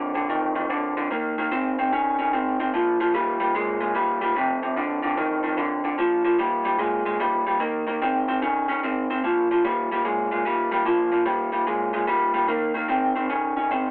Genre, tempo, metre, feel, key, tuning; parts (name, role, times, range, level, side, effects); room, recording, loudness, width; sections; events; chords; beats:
blues; 148 BPM; 4/4; swing 65% on 8ths; Bb mixolydian; A4 = 439 Hz
electric guitar through a small old amp; solo; 0.0-13.9 s; F2 to Db4; -21 LUFS; equal
moderate small room reverb, RT60 0.5 s; rough rehearsal-room recording, telephone sound; -21 LUFS; side -25 dB against mid
0.0-6.0 A section; 6.0-13.9 A section
0.0 F5; 1.1 Eb5; 2.7 Bb5; 4.4 F5; 6.0 Bb5; 7.6 Eb5; 9.2 Bb5; 12.5 Eb5
0.29 0.70 | 1.11 1.51 1.92 2.33 | 2.73 3.14 3.54 3.95 | 4.36 4.76 5.17 5.57 | 5.98 6.39 6.79 7.20 | 7.61 8.01 8.42 8.82 | 9.23 9.63 10.04 10.45 | 10.85 11.26 11.67 12.07 | 12.48 12.88 13.29 13.70